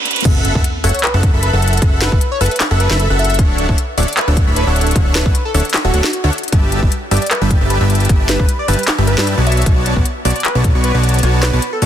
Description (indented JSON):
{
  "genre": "future bass",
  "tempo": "153 BPM",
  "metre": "4/4",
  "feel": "swing 54% on 16ths, half-time",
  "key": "unclear",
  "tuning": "A4 = 440 Hz",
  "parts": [
    { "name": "riser, reverse cymbal and sub drop", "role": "sound effects", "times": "0.0-1.8 s", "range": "none", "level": "-21 LUFS", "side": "right 2 dB", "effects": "none" },
    { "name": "trap drum kit", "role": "drums", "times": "0.1-11.9 s", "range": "crash cymbal, handclaps, hi-hat, snare drum", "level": "-20 LUFS", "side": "left 1 dB", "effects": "soft clipping on snare" },
    { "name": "dense compressed supersaw", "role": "riff", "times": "0.3-11.9 s", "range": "G3 to C#6", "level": "-19 LUFS", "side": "equal", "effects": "sidechain pumping" },
    { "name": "fat analog bass", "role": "bass", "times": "0.3-11.9 s", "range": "D1 to G2", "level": "-15 LUFS", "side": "equal", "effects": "sidechain pumping, high-pass filter" },
    { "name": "electronic kick drum", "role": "drums", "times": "0.3-10.7 s", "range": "none", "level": "-14 LUFS", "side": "equal", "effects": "none" },
    { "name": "plucky unison lead", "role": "melody", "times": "0.8-11.9 s", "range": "F#4 to E5", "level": "-22 LUFS", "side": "equal", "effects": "sidechain pumping, digital delay" }
  ],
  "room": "digital ambience",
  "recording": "dense, heavily limited modern master, high-pass filter",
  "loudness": "-12 LUFS",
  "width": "side -10 dB against mid",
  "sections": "0.3-11.9 A section",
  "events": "break 0.0; riser 0.0; reverse cymbal 0.0; drum fill 0.1; drop 0.3-11.9; impact 0.3-1.8; kick drops out 11.2-11.9",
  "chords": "0.3 F#m7; 3.4 Dmaj9; 6.5 G69; 9.5 Bm9"
}